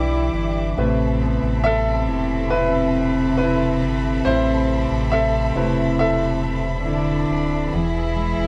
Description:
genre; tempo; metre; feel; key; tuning
pop ballad; 69 BPM; 4/4; straight; A minor; A4 = 443 Hz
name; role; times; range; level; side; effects
warm studio cello section; second line; 0.0-8.5 s; C3 to E4; -26 LUFS; equal; none
clear concert grand piano; accompaniment; 0.0-7.8 s; C3 to E5; -25 LUFS; equal; none
warm studio string section; sustained chords; 0.0-8.5 s; G4 to D6; -33 LUFS; equal; none
fingerpicked steel-string acoustic guitar; arpeggios; 0.0-8.5 s; E2 to E4; -29 LUFS; equal; none
sub bass with octave; bass; 0.0-8.5 s; D1 to B1; -27 LUFS; equal; none
room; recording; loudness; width
light reverb; none; -20 LUFS; mono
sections
0.0-8.5 A section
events
grand piano solo 0.0-8.5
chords
0.0 Em7; 0.8 Amadd9; 7.7 E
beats
| 0.77 1.64 2.51 3.38 | 4.25 5.12 5.99 6.86 | 7.73

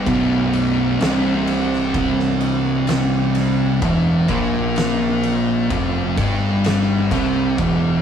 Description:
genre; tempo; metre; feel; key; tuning
stoner and doom metal; 64 BPM; 4/4; straight; unclear; A4 = 444 Hz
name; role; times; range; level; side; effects
thick fuzz guitar; riff; 0.0-8.0 s; B1 to C4; -20 LUFS; left 4 dB; distortion
thick fuzz guitar; riff; 0.0-8.0 s; B1 to C4; -20 LUFS; right 6 dB; distortion
fuzz picked electric bass; bass; 0.0-8.0 s; B0 to C2; -25 LUFS; left 1 dB; overdrive
oversized low-tuned drum kit; drums; 0.1-7.8 s; kick drum, ride cymbal, snare drum; -24 LUFS; equal; none
room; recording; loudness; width
moderate small room ambience, RT60 0.5 s; rough rehearsal-room recording, warm saturation; -16 LUFS; side -8 dB against mid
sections
0.0-8.0 A section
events
none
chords
0.0 N.C.; 3.8 Cadd11/E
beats
| 0.06 1.00 1.94 2.88 | 3.82 4.76 5.70 6.64 | 7.58

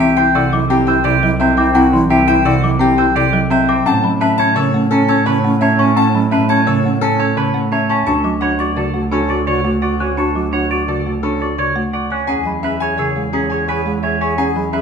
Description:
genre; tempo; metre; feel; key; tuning
classical, minimalist pattern music; 171 BPM; 6/4; straight; unclear; A4 = 438 Hz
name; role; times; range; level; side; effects
bright grand piano; melody; 0.0-14.8 s; G4 to C#6; -21 LUFS; left 9 dB; none
wooden-headed alto flute; second line; 0.0-14.8 s; C#4 to G#4; -22 LUFS; right 2 dB; none
folk marimba with medium mallets; accompaniment; 0.0-14.8 s; C3 to D4; -18 LUFS; equal; none
clean electric guitar; arpeggios; 0.0-14.8 s; C4 to D5; -20 LUFS; right 5 dB; none
small celesta; arpeggios; 0.0-14.8 s; F#5 to A6; -24 LUFS; left 4 dB; none
rich double bass; bass; 0.0-14.8 s; C2 to A2; -21 LUFS; right 4 dB; none
room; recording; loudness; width
wet recital hall reverb, RT60 1.6 s; none; -13 LUFS; side -6 dB against mid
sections
0.0-14.8 A section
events
none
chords
0.0 Cadd9; 3.9 Aadd9; 8.1 D; 12.3 Eadd9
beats
0.00 0.35 0.70 1.05 1.40 | 1.75 2.10 2.46 2.81 3.16 3.51 | 3.86 4.21 4.56 4.91 5.26 5.61 | 5.96 6.32 6.67 7.02 7.37 7.72 | 8.07 8.42 8.77 9.12 9.47 9.82 | 10.18 10.53 10.88 11.23 11.58 11.93 | 12.28 12.63 12.98 13.33 13.68 14.04 | 14.39 14.74

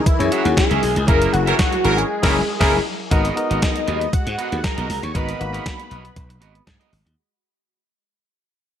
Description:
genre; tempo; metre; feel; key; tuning
early-eighties boogie funk; 118 BPM; 4/4; straight; G# minor; A4 = 440 Hz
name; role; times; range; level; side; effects
fat analog lead; melody; 0.0-6.6 s; E4 to C#6; -23 LUFS; left 1 dB; chorus, phaser
phased string machine; sustained chords; 0.0-7.1 s; F#3 to D#5; -30 LUFS; left 2 dB; ensemble chorus, phaser
slap bass; bass; 0.1-7.1 s; F#1 to G#2; -23 LUFS; equal; none
clean 12-bit digital drum machine; drums; 0.1-7.2 s; crash cymbal, hi-hat, kick drum, snare drum; -20 LUFS; equal; overdrive, gated reverb
barky tine electric piano; accompaniment; 0.2-5.9 s; A#3 to C#5; -24 LUFS; left 4 dB; overdrive
electric guitar at the edge of break-up; riff; 0.2-7.1 s; B3 to E5; -28 LUFS; right 7 dB; lush chorus
clear horn section; second line; 1.1-2.7 s; E3 to A#4; -25 LUFS; right 1 dB; none
room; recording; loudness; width
digital ambience; none; -17 LUFS; side -9 dB against mid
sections
0.0-3.1 A section; 3.1-7.2 B section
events
band accent 2.1-3.1; fade-out 3.1-7.2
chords
0.0 F#9; 3.1 G#m9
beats
0.06 0.57 | 1.08 1.59 2.10 2.60 | 3.11 3.62 4.13 4.64 | 5.15 5.66 6.16 6.67

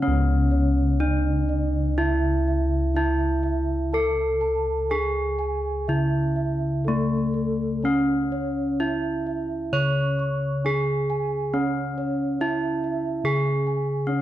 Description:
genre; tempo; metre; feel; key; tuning
Javanese gamelan; 63 BPM; 4/4; uneven beats; C# pelog; A4 = 443 Hz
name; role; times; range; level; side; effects
gamelan-type bronze metallophone; melody; 0.0-14.2 s; A3 to C#5; -24 LUFS; equal; none
gamelan-type bronze metallophone; arpeggios; 0.0-14.2 s; A4 to C#6; -34 LUFS; right 6 dB; none
gamelan-type bossed gongs; bass; 0.0-14.2 s; C#2 to A4; -25 LUFS; equal; none
room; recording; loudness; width
moderate recital hall reverb, RT60 1.6 s; dark, warm production; -21 LUFS; side -13 dB against mid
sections
0.0-14.2 A section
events
none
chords
none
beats
| 0.03 1.00 1.98 2.96 | 3.93 4.91 5.88 6.86 | 7.83 8.80 9.73 10.65 | 11.54 12.41 13.25 14.08

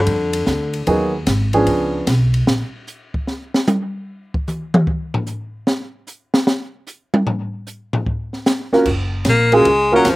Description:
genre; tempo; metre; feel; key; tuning
jazz, small-group swing and bop; 150 BPM; 4/4; swing 67% on 8ths; unclear; A4 = 440 Hz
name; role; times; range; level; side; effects
bright baritone saxophone; melody; 0.0-1.0, 9.3-10.2 s; D3 to A#3; -16 LUFS; left 2 dB; slapback echo
warm upright piano; accompaniment; 0.0-2.0, 8.7-10.0 s; F3 to Bb4; -16 LUFS; right 1 dB; none
upright bass; bass; 0.0-2.6, 8.7-10.2 s; F#1 to F2; -20 LUFS; equal; none
open jazz drum kit; drums; 0.1-10.2 s; crash cymbal, hi-hat, kick drum, ride cymbal, snare drum, toms; -19 LUFS; equal; none
room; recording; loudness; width
little or no reverb; recorded outdoors, with no room sound; -16 LUFS; side -19 dB against mid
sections
0.0-8.9 A section; 8.9-10.2 A section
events
baritone saxophone solo 0.0-10.2; drum solo 2.5-8.9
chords
0.0 Dm7; 0.9 Abm9; 1.7 Db7b9; 2.5 N.C.; 7.3 Db; 8.9 F#maj7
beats
0.07 0.47 | 0.88 1.27 1.68 2.08 | 2.48 2.88 3.27 3.67 | 4.07 4.47 4.87 5.27 | 5.67 6.07 6.47 6.87 | 7.27 7.67 8.06 8.46 | 8.86 9.26 9.66 10.06

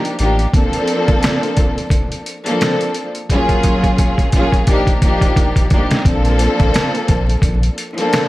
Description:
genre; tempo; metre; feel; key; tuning
hip hop, boom-bap hip-hop; 87 BPM; 4/4; swing 56% on 16ths; Bb major; A4 = 440 Hz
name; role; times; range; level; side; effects
warm studio string section; accompaniment; 0.0-8.3 s; F3 to A4; -17 LUFS; equal; high-pass filter, low-pass filter
trip hop sampler-style drum kit; drums; 0.0-8.3 s; hi-hat, kick drum, snare drum; -16 LUFS; equal; none
warm sub bass; bass; 0.2-0.5, 6.1-7.7 s; A1 to Bb1; -16 LUFS; equal; none
room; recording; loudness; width
little or no reverb; vinyl crackle; -13 LUFS; side -17 dB against mid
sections
0.0-6.1 A section; 6.1-8.3 A section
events
drum fill 3.3-6.1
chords
0.0 Ebmaj9; 0.5 Bbmaj9; 3.3 Gbmaj9; 4.7 Ebmaj9; 6.1 Bbmaj9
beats
| 0.54 1.23 1.92 2.61 | 3.30 3.98 4.67 5.37 | 6.05 6.74 7.43 8.12

